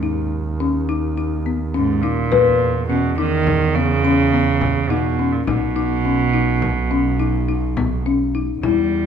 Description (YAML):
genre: contemporary instrumental, chamber music in an uneven meter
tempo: 209 BPM (eighths)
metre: 11/8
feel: straight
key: B major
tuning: A4 = 440 Hz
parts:
  - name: rich cello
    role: melody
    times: 0.0-9.1 s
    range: G#2 to G3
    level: -20 LUFS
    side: right 6 dB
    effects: none
  - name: folk marimba with soft mallets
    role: arpeggios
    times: 0.0-9.1 s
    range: B3 to B4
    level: -20 LUFS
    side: left 7 dB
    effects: none
  - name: rich double bass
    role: bass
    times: 0.0-9.1 s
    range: B1 to E2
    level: -23 LUFS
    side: right 3 dB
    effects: none
  - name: frame drum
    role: percussion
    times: 2.3-9.1 s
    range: none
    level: -26 LUFS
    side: left 4 dB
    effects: none
room: moderate recital hall reverb, RT60 1.4 s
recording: dark, warm production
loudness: -16 LUFS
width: side -8 dB against mid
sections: 0.0-8.6 A section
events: none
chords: 0.0 D#sus4; 2.3 E5; 5.5 B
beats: 0.02 0.31 0.60 0.88 1.17 1.46 1.75 2.03 | 2.32 2.61 2.89 3.18 3.47 3.75 4.04 4.33 4.62 4.90 5.19 | 5.47 5.76 6.05 6.34 6.62 6.91 7.20 7.48 7.77 8.06 8.34 | 8.63 8.92